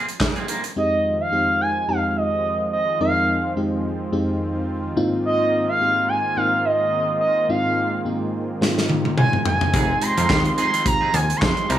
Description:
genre	early-eighties boogie funk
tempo	107 BPM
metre	4/4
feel	swing 56% on 16ths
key	F minor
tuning	A4 = 440 Hz
part	electric guitar at the edge of break-up	riff	0.0-0.7, 9.7-11.8 s	F3 to Bb4	-27 LUFS	right 4 dB	lush chorus
part	modern studio drum kit	drums	0.1-0.8, 8.6-11.8 s	handclaps, hi-hat, kick drum, snare drum, toms	-21 LUFS	equal	gated reverb
part	expressive portamento lead	melody	0.8-11.8 s	Eb5 to Db6	-20 LUFS	right 1 dB	chorus, slapback echo
part	FM electric piano with soft pad layer	accompaniment	0.8-11.6 s	F2 to Bb4	-25 LUFS	left 1 dB	chorus, tremolo
part	warm analog pad	sustained chords	0.8-11.8 s	Eb3 to F4	-29 LUFS	right 3 dB	chorus
part	plucky analog bass	bass	9.7-11.8 s	F1 to F2	-21 LUFS	equal	none
room	light reverb, small room ambience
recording	studio reverb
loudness	-18 LUFS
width	side -12 dB against mid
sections	0.8-11.8 A section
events	drum fill 8.6-9.7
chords	0.0 Ab69; 0.8 Fm7; 5.0 Ab69; 9.7 Fm7

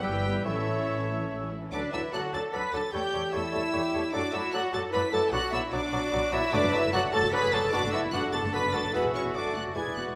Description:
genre	quick classical-period movement for symphony orchestra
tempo	149 BPM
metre	3/4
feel	straight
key	D major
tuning	A4 = 440 Hz
part	warm studio violin section	melody	0.0-10.0 s	E5 to B6	-37 LUFS	equal	none
part	clear clarinet	second line	0.0-10.2 s	E4 to A4	-43 LUFS	equal	none
part	clear oboe	second line	0.0-10.2 s	B4 to E5	-40 LUFS	equal	none
part	large flute ensemble	second line	0.0-10.0 s	G#5 to E6	-46 LUFS	equal	none
part	warm studio violin section	second line	0.0-10.2 s	C#4 to B5	-40 LUFS	equal	none
part	clear studio viola section	accompaniment	0.0-10.2 s	D3 to B4	-40 LUFS	equal	none
part	warm bassoon	accompaniment	0.0-10.2 s	E3 to B3	-40 LUFS	equal	none
part	mellow French horn section	sustained chords	0.0-10.2 s	E3 to B4	-34 LUFS	equal	none
part	dark trumpet section	stabs	0.0-10.1 s	B3 to B4	-37 LUFS	equal	none
part	dark studio cello section	bass	0.0-10.2 s	E3 to B4	-38 LUFS	equal	none
part	dark studio double bass section	bass	0.0-10.1 s	E1 to F#2	-39 LUFS	equal	none
room	wet scoring stage reverb, RT60 1.5 s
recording	none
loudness	-28 LUFS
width	mono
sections	0.0-1.7 A section; 1.7-10.2 B section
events	none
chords	0.5 A; 1.7 D; 2.9 A7/E; 4.1 D/F#; 5.3 Bm; 6.5 D/F#; 7.7 Bm7/F#; 8.9 E; 9.3 D/F#

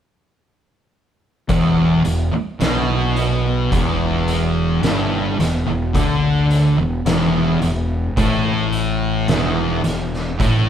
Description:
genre	stoner and doom metal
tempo	54 BPM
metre	4/4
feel	straight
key	E minor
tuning	A4 = 438 Hz
part	thick fuzz guitar	riff	1.5-10.7 s	E2 to D3	-20 LUFS	left 5 dB	distortion
part	thick fuzz guitar	riff	1.5-10.7 s	E2 to D3	-20 LUFS	right 4 dB	distortion
part	fuzz fingered electric bass	bass	1.5-10.7 s	E1 to D2	-24 LUFS	equal	overdrive
part	oversized low-tuned drum kit	drums	1.5-10.7 s	hi-hat, kick drum, snare drum	-23 LUFS	equal	none
room	moderate large studio reverb, RT60 1.1 s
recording	band playing live in one room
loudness	-16 LUFS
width	side -9 dB against mid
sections	1.5-10.7 A section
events	none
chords	1.5 Em

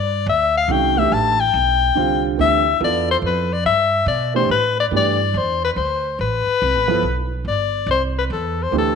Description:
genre	modal jazz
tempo	142 BPM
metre	3/4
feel	swing 64% on 8ths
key	D dorian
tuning	A4 = 442 Hz
part	warm soprano saxophone	melody	0.0-9.0 s	A4 to A5	-18 LUFS	left 6 dB	none
part	upright bass	bass	0.0-9.0 s	G1 to B2	-24 LUFS	right 2 dB	none
part	dark grand piano	accompaniment	0.7-9.0 s	D3 to A4	-22 LUFS	right 13 dB	none
room	moderate echo chamber reverb, RT60 1.7 s, studio reverb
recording	1960s-style stereo with parts hard left and right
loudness	-16 LUFS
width	side -6 dB against mid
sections	0.0-9.0 A section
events	none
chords	0.0 D13sus4

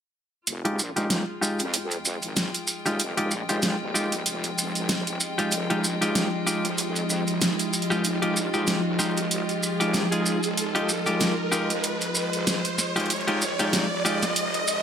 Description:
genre	glitch hop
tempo	95 BPM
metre	4/4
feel	swing 57% on 16ths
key	F minor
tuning	A4 = 438 Hz
part	warbly tape-like pad	sustained chords	2.3-14.8 s	F3 to G4	-32 LUFS	equal	chorus, built-in reverb
part	wobble bass	bass	0.5-14.8 s	Eb1 to F2	-35 LUFS	equal	chorus, tube saturation, high-pass filter
part	dubstep drum kit	drums	0.5-14.7 s	hi-hat, snare drum	-27 LUFS	right 1 dB	none
part	maracas	percussion	0.5-14.8 s	none	-29 LUFS	right 2 dB	none
part	riser	sound effects	2.8-14.8 s	none	-32 LUFS	right 1 dB	none
part	warm chamber string section	texture	0.5-14.8 s	Ab3 to G5	-32 LUFS	left 1 dB	none
part	semi-hollow electric guitar	stabs	0.6-14.2 s	Ab3 to Ab4	-27 LUFS	equal	low-pass filter, tape echo
room	moderate studio reverb, RT60 0.5 s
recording	none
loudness	-23 LUFS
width	side -8 dB against mid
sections	0.5-14.8 A section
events	build-up 0.5-14.8; filter sweep on clean electric guitar 0.5-14.8; filter sweep on ambient pad 0.5-14.8; riser 2.8-14.8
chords	0.5 Fm9

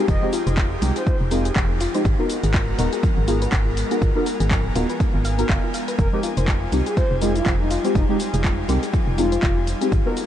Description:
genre	deep house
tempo	122 BPM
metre	4/4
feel	swing 57% on 16ths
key	F minor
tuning	A4 = 435 Hz
part	airy breathy pad	sustained chords	0.0-10.3 s	G3 to Ab5	-29 LUFS	left 1 dB	chorus, sidechain pumping
part	soft round pluck	arpeggios	0.0-10.2 s	F3 to F5	-30 LUFS	left 3 dB	chorus, sidechain pumping, analog delay
part	deep mellow chord stab	stabs	0.0-10.1 s	Ab3 to Bb4	-25 LUFS	left 1 dB	chorus, phaser, sidechain pumping, analog delay
part	breathy flute-like synth lead	melody	0.1-1.2, 6.0-9.7 s	Eb4 to Eb5	-29 LUFS	left 1 dB	lush chorus, tape echo
part	organ-like FM bass	bass	0.1-10.0 s	Eb1 to C2	-23 LUFS	equal	sidechain pumping
part	electronic kick drum	drums	0.1-10.0 s	none	-21 LUFS	equal	overdrive, vintage 12-bit sampler grit, studio ambience
part	house drum kit	drums	0.1-10.3 s	handclaps, hi-hat, shaker	-30 LUFS	equal	overdrive, vintage 12-bit sampler grit, studio ambience
room	light reverb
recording	cassette tape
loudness	-18 LUFS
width	side -11 dB against mid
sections	0.0-10.3 A section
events	none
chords	0.0 Fm9; 2.1 Abm9; 6.0 Fm9

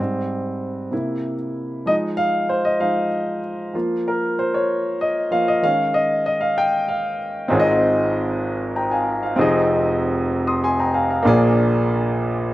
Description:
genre	gospel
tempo	64 BPM (dotted quarters)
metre	6/8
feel	straight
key	Ab major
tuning	A4 = 441 Hz
part	warm grand piano	solo	0.0-12.5 s	F1 to Eb6	-18 LUFS	equal	slapback echo
room	little or no reverb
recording	recorded outdoors, with no room sound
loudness	-18 LUFS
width	side -15 dB against mid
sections	0.0-7.5 A section; 7.5-12.5 B section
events	grand piano solo 0.0-7.5; grand piano fill 10.3-11.2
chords	0.0 Abmaj7; 0.9 C7; 1.9 Fm7; 3.7 Dbmaj13/F; 5.6 Eb7sus4; 7.5 Ab6; 9.4 Fm7; 11.2 Bb7

